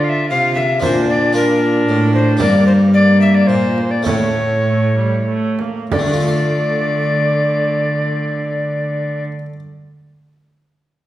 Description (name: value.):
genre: classical, renaissance-style consort dance.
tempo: 90-115 BPM.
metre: 3/4.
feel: straight.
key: D minor.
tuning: A4 = 441 Hz.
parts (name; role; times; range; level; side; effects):
alto recorder; melody; 0.0-9.2 s; Bb4 to F5; -18 LUFS; left 2 dB; none.
warm viola; second line; 0.0-9.3 s; G3 to F4; -22 LUFS; right 2 dB; none.
harpsichord; accompaniment; 0.0-9.6 s; G2 to F5; -19 LUFS; left 1 dB; none.
dark cello; bass; 0.0-9.2 s; G2 to D3; -19 LUFS; right 1 dB; none.
frame drum; percussion; 0.6-6.2 s; none; -25 LUFS; right 3 dB; none.
room: wet recital hall reverb, RT60 1.4 s.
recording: heard from further back in the room.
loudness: -13 LUFS.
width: side -14 dB against mid.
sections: 0.0-5.9 A section; 5.9-9.9 B section.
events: slowing down 1.6-5.9.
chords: 0.0 Dm; 0.8 Bb; 2.4 Gm; 4.1 A; 5.9 Dm.